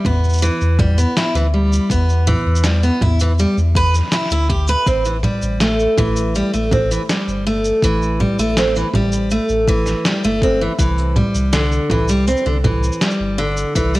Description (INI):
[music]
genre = folktronica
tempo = 81 BPM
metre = 4/4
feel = straight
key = unclear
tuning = A4 = 442 Hz
[part]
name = picked steel-string acoustic guitar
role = arpeggios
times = 0.0-14.0 s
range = D3 to B4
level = -18 LUFS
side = equal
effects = cassette tape, analog delay
[part]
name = electronic congas, shaker and snare drum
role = drums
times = 0.0-14.0 s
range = none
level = -22 LUFS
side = equal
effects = studio reverb
[part]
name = warm sub bass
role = bass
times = 0.1-14.0 s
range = G1 to E2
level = -18 LUFS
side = equal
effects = tube saturation
[part]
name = electronic kick drum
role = drums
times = 0.1-13.9 s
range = none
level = -20 LUFS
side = equal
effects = studio reverb
[sound]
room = light reverb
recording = home recording on cassette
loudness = -14 LUFS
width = side -18 dB against mid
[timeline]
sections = 0.0-14.0 A section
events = none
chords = 0.0 Em; 4.9 A7(no3); 10.8 Cadd9